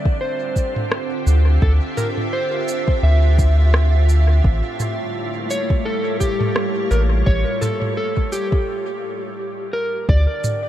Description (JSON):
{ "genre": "ambient dub", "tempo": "85 BPM", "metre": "4/4", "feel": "swing 56% on 16ths", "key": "D minor", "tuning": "A4 = 441 Hz", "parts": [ { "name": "electric slide guitar", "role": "melody", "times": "0.0-10.7 s", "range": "G4 to E5", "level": "-24 LUFS", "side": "equal", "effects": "dub echo" }, { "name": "soft additive organ-like pad", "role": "sustained chords", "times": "0.0-10.7 s", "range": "A2 to E5", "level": "-26 LUFS", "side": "right 1 dB", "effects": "ensemble chorus, built-in reverb" }, { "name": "electronic kick drum", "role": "drums", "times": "0.1-10.2 s", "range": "none", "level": "-18 LUFS", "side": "equal", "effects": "none" }, { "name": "organic electronic drum kit", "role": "drums", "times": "0.6-10.6 s", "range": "rim click, shaker, toms", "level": "-25 LUFS", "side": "right 1 dB", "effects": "dub echo" }, { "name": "round analog bass", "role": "bass", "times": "1.3-10.3 s", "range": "A1 to D2", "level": "-14 LUFS", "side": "equal", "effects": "none" } ], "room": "digital ambience", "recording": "none", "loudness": "-16 LUFS", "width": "side -12 dB against mid", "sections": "0.0-10.1 A section", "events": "break 8.7-10.1", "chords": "0.0 Dm11; 4.4 A7b9b13; 10.1 D7sus4" }